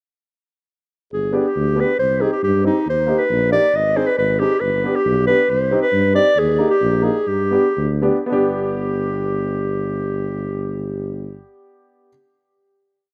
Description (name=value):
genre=klezmer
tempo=103-138 BPM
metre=2/4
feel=straight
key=unclear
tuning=A4 = 440 Hz
part: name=mellow clarinet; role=melody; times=1.1-11.4 s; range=Eb4 to Eb5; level=-21 LUFS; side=equal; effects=none
part: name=mellow tuba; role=bass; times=1.1-11.4 s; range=G1 to G2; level=-25 LUFS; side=equal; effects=none
part: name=warm upright piano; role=accompaniment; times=1.3-12.1 s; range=Bb3 to Ab4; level=-24 LUFS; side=equal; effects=none
room=moderate plate reverb, RT60 3.1 s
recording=rough home demo mix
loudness=-18 LUFS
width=mono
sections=1.1-8.3 A section; 8.3-10.6 final chord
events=slowing down 6.4-8.3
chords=1.1 G; 2.0 Cm; 2.9 Eb; 3.7 Ab; 4.6 G; 5.5 Cm; 6.4 Eb; 7.3 G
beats=| 1.12 1.56 | 2.00 2.43 | 2.87 3.31 | 3.75 4.18 | 4.62 5.05 | 5.49 5.92 | 6.36 6.80 | 7.26 7.75 | 8.30 8.88 | 9.47 10.05